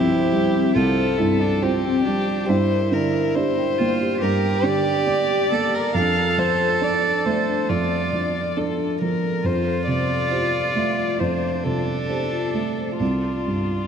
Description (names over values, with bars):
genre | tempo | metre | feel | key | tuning
neoclassical piano and strings | 69 BPM | 4/4 | rubato | G dorian | A4 = 440 Hz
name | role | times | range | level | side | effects
dark violin | melody | 0.0-13.9 s | F4 to F5 | -25 LUFS | left 5 dB | diffuse ambient delay
warm cello | second line | 0.0-13.9 s | C4 to Bb4 | -24 LUFS | right 4 dB | diffuse ambient delay
felt-muted upright piano | accompaniment | 0.0-13.9 s | C2 to D5 | -23 LUFS | right 3 dB | none
vibraphone with soft mallets | arpeggios | 0.0-13.8 s | C4 to G5 | -28 LUFS | left 6 dB | diffuse ambient delay
room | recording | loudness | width
wet plate reverb, RT60 2.8 s | dreamy mix soaked in reverb, nothing above 10.8 kHz | -19 LUFS | side -7 dB against mid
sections
0.0-13.9 A section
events
none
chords
0.0 Csus4; 2.5 Gm; 6.0 Dm/F; 9.4 Fadd9; 13.0 Csus4